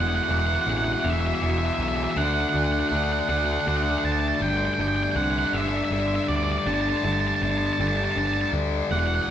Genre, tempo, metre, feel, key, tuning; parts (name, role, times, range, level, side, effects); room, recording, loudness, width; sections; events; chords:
rock; 53 BPM (dotted quarters); 6/8; straight; G major; A4 = 440 Hz
octave-fuzz lead guitar; melody; 0.0-9.3 s; D5 to A5; -26 LUFS; right 4 dB; distortion
airy breathy pad; sustained chords; 0.0-9.3 s; G3 to E5; -35 LUFS; equal; chorus
thick fuzz guitar; riff; 0.0-9.3 s; E2 to D4; -26 LUFS; left 3 dB; distortion
growling picked electric bass; bass; 0.0-9.3 s; E1 to D2; -27 LUFS; right 1 dB; overdrive
wet large studio reverb, RT60 1.4 s; band playing live in one room; -22 LUFS; side -10 dB against mid
0.0-9.3 A section
0.0 Emadd9; 2.2 D; 4.4 Gsus2